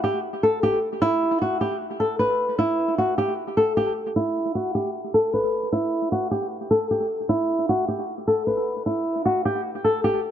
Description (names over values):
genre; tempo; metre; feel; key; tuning
hip hop; 153 BPM; 4/4; half-time; unclear; A4 = 440 Hz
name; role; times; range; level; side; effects
flamenco guitar; solo; 0.0-10.2 s; E4 to B4; -21 LUFS; equal; tape echo
room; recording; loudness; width
light reverb, studio reverb; echo-heavy mix, low-pass filter; -21 LUFS; side -10 dB against mid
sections
0.0-4.2 A section; 4.2-10.3 B section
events
filter sweep 4.2-10.3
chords
none